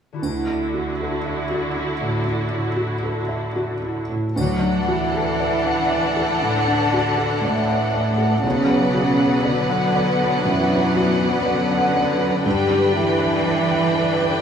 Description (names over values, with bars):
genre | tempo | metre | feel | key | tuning
cinematic, emotional film score for orchestra | 59 BPM | 4/4 | rubato | D major | A4 = 440 Hz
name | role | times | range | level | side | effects
concert harp | arpeggios | 0.1-14.4 s | G2 to D6 | -29 LUFS | left 3 dB | none
felt-muted upright piano | accompaniment | 0.2-14.4 s | B1 to G5 | -24 LUFS | equal | none
rich symphonic viola section | accompaniment | 0.2-14.4 s | D3 to F#4 | -25 LUFS | left 1 dB | none
rich symphonic cello section | bass | 0.2-14.4 s | A2 to G3 | -24 LUFS | right 2 dB | none
triangle | percussion | 0.2-6.4 s | none | -43 LUFS | left 4 dB | none
rich symphonic violin section | melody | 4.4-14.4 s | F#5 to G5 | -27 LUFS | left 2 dB | none
warm French horn | melody | 4.4-14.4 s | A3 to G4 | -26 LUFS | equal | none
rich studio violin section | second line | 4.4-14.4 s | A4 to D5 | -26 LUFS | equal | none
room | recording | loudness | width
wet stone room reverb, RT60 1.3 s | small room ambience | -18 LUFS | side -7 dB against mid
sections
0.2-4.4 A section; 4.4-14.4 B section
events
none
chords
0.2 Dadd9; 8.4 Bmadd9; 12.5 G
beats
| 0.23 1.27 2.28 3.31 | 4.37 5.41 6.42 7.44 | 8.45 9.45 10.46 11.46 | 12.45 13.45